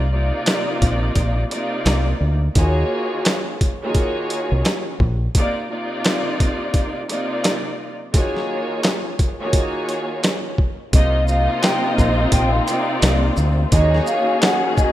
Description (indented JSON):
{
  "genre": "hip hop, boom-bap hip-hop",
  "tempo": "86 BPM",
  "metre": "4/4",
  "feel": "swing 62% on 16ths",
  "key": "C minor",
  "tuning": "A4 = 440 Hz",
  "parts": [
    { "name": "rich studio string section", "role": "accompaniment", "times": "0.0-14.9 s", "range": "C3 to Eb5", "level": "-23 LUFS", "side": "equal", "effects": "cassette tape, high-pass filter, low-pass filter" },
    { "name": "deep dub fingered electric bass", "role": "bass", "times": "0.0-5.3, 10.9-14.0 s", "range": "Bb1 to Eb2", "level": "-18 LUFS", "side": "equal", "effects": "none" },
    { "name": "boom bap sampler-style drum kit", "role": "drums", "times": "0.5-14.9 s", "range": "handclaps, hi-hat, kick drum, shaker, snare drum", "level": "-19 LUFS", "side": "equal", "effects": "none" },
    { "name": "breathy mellow concert flute", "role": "melody", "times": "10.9-14.9 s", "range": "Eb5 to G5", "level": "-22 LUFS", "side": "right 1 dB", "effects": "high-pass filter, low-pass filter" },
    { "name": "warm studio string section", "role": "sustained chords", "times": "10.9-14.9 s", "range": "C3 to Ab4", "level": "-23 LUFS", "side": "left 3 dB", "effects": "high-pass filter, low-pass filter" }
  ],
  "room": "light reverb, small room ambience",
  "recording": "rough home demo mix",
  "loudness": "-17 LUFS",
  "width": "side -14 dB against mid",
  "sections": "0.0-10.9 A section; 10.9-14.9 B section",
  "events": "none",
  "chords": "0.0 Cm11; 2.6 Ebm11; 5.3 Cm11; 8.1 Ebm11; 10.9 Cm11; 13.7 Ebm7"
}